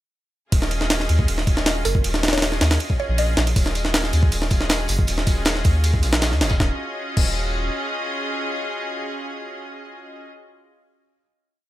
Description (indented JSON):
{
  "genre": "drum and bass, jungle",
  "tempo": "158 BPM",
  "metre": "4/4",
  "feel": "straight",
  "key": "Eb minor",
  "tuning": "A4 = 440 Hz",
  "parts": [
    { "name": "warm studio string section", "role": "sustained chords", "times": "0.5-10.2 s", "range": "Db4 to Eb5", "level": "-28 LUFS", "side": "equal", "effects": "none" },
    { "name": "soft dub sub bass", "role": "bass", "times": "0.5-7.7 s", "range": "Eb1 to Eb2", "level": "-22 LUFS", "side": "equal", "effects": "none" },
    { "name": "jungle sampler-style drum kit", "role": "drums", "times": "0.5-7.3 s", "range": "crash cymbal, hi-hat, kick drum, ride cymbal, snare drum", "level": "-20 LUFS", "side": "equal", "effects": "none" },
    { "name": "mallet-like synth pluck", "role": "melody", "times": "1.9-3.6 s", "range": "Bb4 to Eb5", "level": "-29 LUFS", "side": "equal", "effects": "chorus, phaser, dub echo" },
    { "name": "crunchy breakbeat drum kit", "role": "drums", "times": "3.6-6.6 s", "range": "hi-hat, snare drum, tambourine", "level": "-33 LUFS", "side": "left 2 dB", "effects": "none" }
  ],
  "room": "small room reverb",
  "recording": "none",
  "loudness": "-18 LUFS",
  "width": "side -14 dB against mid",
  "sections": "0.5-6.6 drop; 6.6-9.6 final chord",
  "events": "drop 0.5-6.6",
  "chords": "0.5 Ebm11",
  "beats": "| 0.52 0.90 1.28 1.66 | 2.04 2.42 2.80 3.18 | 3.56 3.94 4.32 4.70 | 5.08 5.46 5.84 6.22 | 6.60 6.98 7.36 7.74 | 8.12 8.50 8.88 9.26"
}